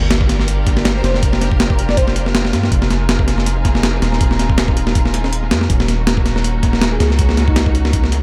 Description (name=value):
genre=drum and bass, jungle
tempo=161 BPM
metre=4/4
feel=swing 55% on 16ths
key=unclear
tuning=A4 = 440 Hz
part: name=warm studio string section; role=sustained chords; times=0.0-8.2 s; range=Bb3 to Bb4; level=-27 LUFS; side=equal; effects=none
part: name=long sustained 808-style bass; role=bass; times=0.0-8.2 s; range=Eb1 to G2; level=-20 LUFS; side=equal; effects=tube saturation
part: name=sub drop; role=sound effects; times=0.0-1.2 s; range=none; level=-28 LUFS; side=equal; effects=none
part: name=breakbeat sampler-style drum kit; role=drums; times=0.1-8.2 s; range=hi-hat, kick drum, snare drum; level=-18 LUFS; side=equal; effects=analog delay
part: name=airy dreamy lead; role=melody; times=1.0-2.1, 6.9-7.7 s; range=Eb4 to D5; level=-27 LUFS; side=equal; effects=chorus, dub echo
room=light reverb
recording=echo-heavy mix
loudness=-15 LUFS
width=mono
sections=0.0-8.2 A section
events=impact 0.0-1.2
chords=0.0 Gm7; 2.7 Fm7; 5.7 Ebm7